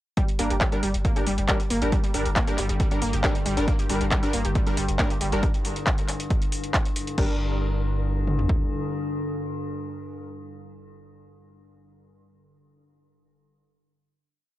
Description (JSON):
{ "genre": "driving peak-time techno", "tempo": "137 BPM", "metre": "4/4", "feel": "straight", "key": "G minor", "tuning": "A4 = 440 Hz", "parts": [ { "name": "wide unison pluck", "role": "riff", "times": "0.2-7.4 s", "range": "G3 to G4", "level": "-30 LUFS", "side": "equal", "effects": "sidechain pumping, tape echo" }, { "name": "metallic inharmonic drone", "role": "drone", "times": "1.4-10.3 s", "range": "G2 to D3", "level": "-33 LUFS", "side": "left 2 dB", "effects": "chorus, built-in reverb, sidechain pumping" }, { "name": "techno drum kit", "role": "drums", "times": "0.2-8.6 s", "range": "kick drum, toms", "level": "-25 LUFS", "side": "equal", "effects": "none" }, { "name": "techno drum kit", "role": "drums", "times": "0.2-7.3 s", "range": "crash cymbal, handclaps, hi-hat", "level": "-29 LUFS", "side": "equal", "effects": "sidechain pumping on hats, sidechain pumping on cymbals" }, { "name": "rave stab", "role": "stabs", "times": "0.4-10.3 s", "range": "G3 to Bb4", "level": "-31 LUFS", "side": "equal", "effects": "chorus, built-in reverb, sidechain pumping, tape echo" }, { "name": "warm sub bass", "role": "bass", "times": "0.4-8.5 s", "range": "G1", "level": "-27 LUFS", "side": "equal", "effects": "overdrive, sidechain pumping, low-pass filter" } ], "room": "digital ambience", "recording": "dry, gritty hardware recording, cassette tape", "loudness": "-22 LUFS", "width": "side -15 dB against mid", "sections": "0.2-7.2 drop; 7.2-10.7 final chord", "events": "drop 0.2-7.2", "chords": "0.2 Gm" }